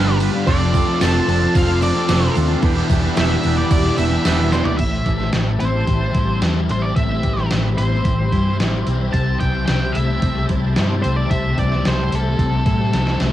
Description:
rock, shoegaze and dream pop; 111 BPM; 4/4; straight; A minor; A4 = 440 Hz
octave-fuzz lead guitar; melody; 0.0-13.2 s; A4 to A5; -25 LUFS; equal; distortion, cassette tape, analog delay
analog string pad; sustained chords; 0.0-13.3 s; G4 to C6; -29 LUFS; equal; ensemble chorus, phaser, cassette tape
thick fuzz guitar; riff; 0.0-13.3 s; E2 to E4; -23 LUFS; left 5 dB; distortion, analog chorus, cassette tape
tight distorted guitar; riff; 0.0-4.8 s; E3 to G4; -23 LUFS; equal; distortion, cassette tape
twangy electric guitar; riff; 0.0-13.3 s; A2 to B4; -27 LUFS; right 10 dB; reverse reverb, cassette tape
hollow-body short-scale fingered electric bass; bass; 0.0-13.3 s; E1 to A2; -20 LUFS; equal
gated 80s digital drum machine; drums; 0.2-13.3 s; crash cymbal, hi-hat, kick drum, snare drum, toms; -21 LUFS; equal; gated reverb, gated reverb snare, overdrive, cassette tape
tambourine; percussion; 0.2-4.7 s; -37 LUFS; right 12 dB
little or no reverb; home recording on cassette; -15 LUFS; side -13 dB against mid
0.0-4.8 A section; 4.8-13.3 B section
drum fill 4.5, 12.9-13.3
0.5 F6; 2.6 Em7; 4.8 Am7; 9.1 C6

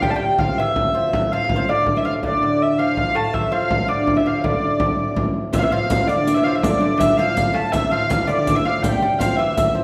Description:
medieval dance; 109 BPM (dotted quarters); 6/8; straight; D minor; A4 = 440 Hz
dark hurdy-gurdy; melody; 0.0-9.8 s; D5 to A5; -22 LUFS; equal
lute; second line; 0.0-9.8 s; D3 to A3; -26 LUFS; equal
pedal harmonium; drone; 0.0-9.8 s; D2 to A2; -32 LUFS; equal
frame drum; percussion; 0.0-9.8 s; -26 LUFS; equal
riq; percussion; 5.5-9.7 s; -33 LUFS; equal
wet recital hall reverb, RT60 1.4 s; heard from further back in the room; -19 LUFS; mono
0.0-5.5 A section; 5.5-9.8 A section

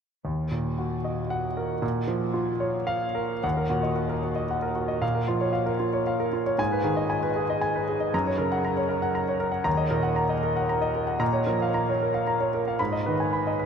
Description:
neoclassical minimalist piano; 115 BPM; 3/4; rubato; Eb minor; A4 = 440 Hz
clear concert grand piano; solo; 0.2-13.7 s; Eb2 to Cb6; -24 LUFS; equal
wet huge ambient reverb, RT60 7.3 s; in a vast, echoing space; -24 LUFS; side -7 dB against mid
0.2-3.4 A section; 3.4-13.7 B section
0.2 Ebm; 1.8 Bbm; 3.4 Ebm; 5.0 Bbm; 6.6 Abm; 8.1 Gb; 9.7 Ebm; 11.2 Bbm; 12.8 Abm

